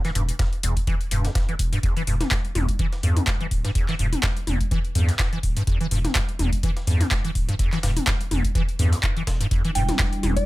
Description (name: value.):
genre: acid house.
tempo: 125 BPM.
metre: 4/4.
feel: swing 56% on 16ths.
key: E phrygian.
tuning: A4 = 440 Hz.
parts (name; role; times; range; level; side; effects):
acid bass, square; riff; 0.0-10.3 s; E2 to E3; -27 LUFS; equal; overdrive, ensemble chorus, cassette tape, sidechain pumping, digital delay.
breakbeat sampler-style drum kit; drums; 0.0-10.4 s; hi-hat, snare drum; -36 LUFS; left 1 dB; high-pass filter on snare, high-pass filter on hats.
electro analog drum machine; drums; 0.0-10.5 s; handclaps, hi-hat, toms; -28 LUFS; left 1 dB; none.
saturated sub bass; bass; 0.2-10.4 s; D1 to E2; -23 LUFS; equal; tube saturation, sidechain pumping.
electronic kick drum; drums; 0.4-10.5 s; none; -24 LUFS; equal; none.
dark analog pad; sustained chords; 9.5-10.5 s; G3 to E4; -30 LUFS; right 1 dB; chorus, sidechain pumping.
soft synth bell; melody; 9.8-10.5 s; D5 to G5; -28 LUFS; right 1 dB; chorus, phaser, ping-pong delay.
room: little or no reverb.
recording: none.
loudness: -20 LUFS.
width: side -18 dB against mid.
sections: 0.0-10.5 A section.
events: none.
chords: 0.0 Em7.